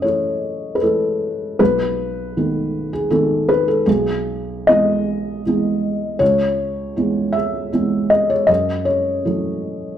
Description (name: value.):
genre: neoclassical minimalist piano.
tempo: 78 BPM.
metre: 3/4.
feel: rubato.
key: unclear.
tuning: A4 = 440 Hz.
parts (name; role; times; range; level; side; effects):
felt-muted upright piano; solo; 0.0-10.0 s; B1 to E5; -16 LUFS; equal; none.
room: moderate large studio reverb, RT60 1.1 s.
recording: band playing live in one room.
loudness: -16 LUFS.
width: side -10 dB against mid.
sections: 0.0-10.0 A section.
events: none.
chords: 0.0 F#m7; 1.6 B7; 3.9 Emaj7/B; 6.2 C#m7; 8.5 F#m7.